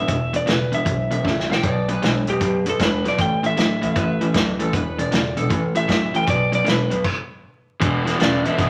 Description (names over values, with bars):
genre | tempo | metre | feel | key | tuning
electric blues shuffle | 155 BPM | 4/4 | swing 65% on 8ths | unclear | A4 = 440 Hz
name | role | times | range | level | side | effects
electric slide guitar | melody | 0.0-7.1 s | G4 to G5 | -25 LUFS | equal | none
raw garage guitar | riff | 0.0-8.7 s | E2 to G#3 | -24 LUFS | equal | overdrive
upright bass | bass | 0.0-8.7 s | E1 to F#2 | -31 LUFS | equal | none
warm soul drum kit | drums | 0.1-8.7 s | crash cymbal, hi-hat, kick drum, snare drum | -25 LUFS | equal | none
electric slide guitar | second line | 1.1-5.6, 8.2-8.7 s | A4 to G5 | -30 LUFS | equal | none
room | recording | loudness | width
wet large studio reverb, RT60 1.1 s | vinyl crackle | -20 LUFS | mono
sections
0.0-7.8 A section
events
drum fill 1.3-1.6; stop 7.0-7.8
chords
0.0 E5; 1.6 B; 3.2 Aadd9; 4.7 E5; 5.5 A; 6.3 B5; 7.8 E5